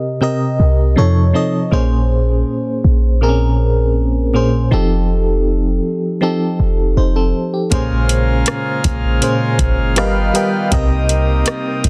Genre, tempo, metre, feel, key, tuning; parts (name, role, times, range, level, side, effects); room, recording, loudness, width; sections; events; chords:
contemporary R&B; 80 BPM; 4/4; straight; Bb dorian; A4 = 440 Hz
FM electric piano with tremolo; accompaniment; 0.0-11.9 s; Bb2 to G5; -19 LUFS; equal
clean 808-style bass; bass; 0.6-11.9 s; F1 to F2; -18 LUFS; equal
pipe organ, principal chorus; sustained chords; 7.7-11.9 s; C3 to F4; -23 LUFS; equal; sidechain pumping
booming analog drum machine; drums; 7.7-11.9 s; hi-hat, kick drum, rim click; -20 LUFS; equal; soft clipping on snare
digital ambience; dense, heavily limited modern master; -16 LUFS; mono
0.0-11.9 A section
0.0 Cm7; 1.0 F7b13; 1.7 Bbm7; 4.7 F9; 7.7 Bbm7; 10.0 G7alt; 10.7 Cm7